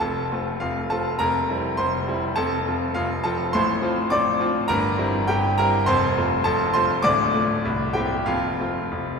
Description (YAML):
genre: classical, virtuoso piano study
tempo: 102 BPM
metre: 2/4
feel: rubato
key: F major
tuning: A4 = 440 Hz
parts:
  - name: bright grand piano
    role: solo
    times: 0.0-9.2 s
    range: C1 to D6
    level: -20 LUFS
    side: equal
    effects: none
room: wet church reverb, RT60 2.8 s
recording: minimal, uncompressed stereo recording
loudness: -20 LUFS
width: side -5 dB against mid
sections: 0.0-9.2 A section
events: none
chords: 0.0 F; 1.2 C7/F; 2.4 F; 3.5 F/A; 4.7 C7/G; 5.9 F; 7.0 Dm; 7.6 C7; 8.3 F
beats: | 0.01 0.61 | 1.20 1.78 | 2.37 2.96 | 3.53 4.11 | 4.68 5.27 | 5.85 6.44 | 7.03 7.63 | 8.27 8.91